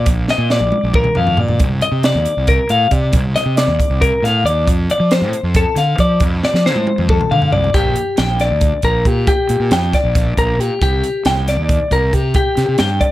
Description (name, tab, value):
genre	math rock and midwest emo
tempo	273 BPM (eighths)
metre	7/8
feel	straight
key	Bb major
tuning	A4 = 444 Hz
part	twelve-string electric guitar	arpeggios	0.0-13.1 s	G4 to G5	-17 LUFS	left 2 dB	none
part	fuzz fingered electric bass	bass	0.0-13.0 s	Bb1 to F3	-17 LUFS	right 1 dB	overdrive
part	crisp fusion drum kit	drums	0.1-13.1 s	hi-hat, kick drum, snare drum, toms	-17 LUFS	right 1 dB	none
room	little or no reverb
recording	none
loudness	-13 LUFS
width	side -15 dB against mid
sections	0.0-7.7 A section; 7.7-13.1 B section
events	drum fill 0.3-1.6, 6.4-7.7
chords	0.0 Bbadd11; 1.6 Cm11; 4.7 F; 7.7 Bb6; 10.8 C7sus2